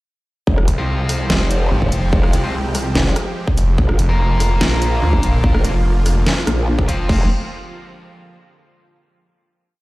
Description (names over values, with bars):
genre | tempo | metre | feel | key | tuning
heavy wobble dubstep | 145 BPM | 4/4 | half-time | F dorian | A4 = 440 Hz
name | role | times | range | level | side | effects
supersaw pad | sustained chords | 0.9-7.3 s | D3 to G4 | -26 LUFS | right 1 dB | sidechain pumping
growl bass | bass | 0.5-7.3 s | F1 to Bb1 | -17 LUFS | equal | chorus, overdrive
electronic kick drum | drums | 0.5-7.2 s | none | -17 LUFS | equal | overdrive
dubstep drum kit | drums | 0.6-7.2 s | crash cymbal, hi-hat, rim click, snare drum | -23 LUFS | equal | overdrive
snarling distorted saw bass | bass | 0.7-6.2 s | F1 to D2 | -18 LUFS | equal | distortion, overdrive
tight distorted guitar | stabs | 0.8-7.2 s | F3 to Bb4 | -26 LUFS | left 2 dB | distortion, tape echo
room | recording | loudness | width
little or no reverb | played on a big sound system in a bare room, large studio reverb, lossy compression artefacts | -14 LUFS | side -20 dB against mid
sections
0.5-7.1 drop; 7.1-8.7 final chord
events
drop 0.5-7.1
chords
0.5 Fmadd9; 3.8 Bb; 7.1 Fmadd9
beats
| 0.47 0.89 1.30 1.71 | 2.13 2.54 2.96 3.37 | 3.78 4.20 4.61 5.02 | 5.44 5.85 6.26 6.68 | 7.09